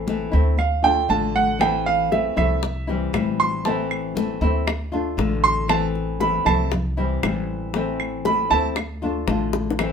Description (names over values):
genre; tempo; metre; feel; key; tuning
latin, Cuban son and guajira; 117 BPM; 4/4; straight; A minor; A4 = 440 Hz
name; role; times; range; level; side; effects
nylon-string guitar; accompaniment; 0.0-9.9 s; D3 to F4; -25 LUFS; left 4 dB; none
upright bass; bass; 0.0-9.9 s; A1 to D2; -26 LUFS; equal; none
congas; percussion; 0.1-9.9 s; none; -28 LUFS; left 4 dB; none
clear grand piano; arpeggios; 0.6-8.7 s; E5 to C6; -20 LUFS; right 5 dB; none
claves; percussion; 0.6-9.9 s; none; -30 LUFS; right 4 dB; none
bongos; percussion; 1.6-9.9 s; none; -28 LUFS; left 6 dB; none
room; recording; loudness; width
moderate studio reverb, RT60 0.7 s; minimal, uncompressed stereo recording; -19 LUFS; side -7 dB against mid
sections
0.0-9.8 A section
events
grand piano solo 0.0-9.8; drum fill 9.5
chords
0.0 Am; 0.6 Dm; 1.6 Am; 2.6 C; 3.7 Am; 4.7 Dm; 5.7 Am; 6.7 C; 7.7 Am; 8.8 Dm